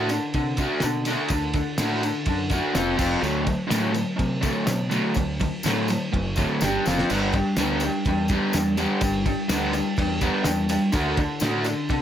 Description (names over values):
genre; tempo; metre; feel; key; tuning
garage rock duo or trio; 125 BPM; 4/4; straight; D mixolydian; A4 = 441 Hz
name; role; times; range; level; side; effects
crunchy overdriven guitar; riff; 0.0-12.0 s; D3 to G4; -23 LUFS; equal; none
growling fingered electric bass; bass; 0.0-12.0 s; F1 to C3; -29 LUFS; equal; overdrive
cloth-damped thuddy drum kit; drums; 0.1-12.0 s; crash cymbal, kick drum, ride cymbal, snare drum; -28 LUFS; equal; none
tambourine; percussion; 0.1-11.9 s; none; -38 LUFS; left 4 dB; none
room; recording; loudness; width
little or no reverb; none; -21 LUFS; side -10 dB against mid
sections
0.0-12.0 A section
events
drum fill 6.8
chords
0.0 D; 2.8 F5; 3.2 D; 6.6 G5; 6.8 F5; 7.1 G; 10.9 D